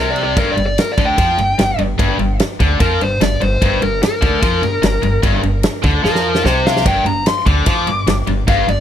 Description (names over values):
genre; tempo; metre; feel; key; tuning
blues rock power trio and southern rock; 148 BPM; 4/4; straight; G minor; A4 = 435 Hz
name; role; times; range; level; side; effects
dark smooth lead guitar; melody; 0.0-8.8 s; Bb4 to D6; -19 LUFS; left 1 dB; overdrive, tape echo
tight distorted guitar; riff; 0.0-8.8 s; G2 to F3; -18 LUFS; left 1 dB; distortion
upright bass; bass; 0.0-8.8 s; G1 to F2; -20 LUFS; equal; none
huge arena drum kit; drums; 0.2-8.8 s; kick drum, ride cymbal, snare drum; -18 LUFS; equal; none
room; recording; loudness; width
little or no reverb; dry, close 1970s-style studio recording; -13 LUFS; side -10 dB against mid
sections
0.0-8.8 A section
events
lead electric guitar solo 0.0-8.8; drum fill 6.0-6.9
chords
0.0 Gm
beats
| 0.37 0.77 1.18 1.59 | 1.99 2.40 2.80 3.21 | 3.61 4.02 4.42 4.83 | 5.23 5.64 6.04 6.45 | 6.86 7.26 7.67 8.07 | 8.48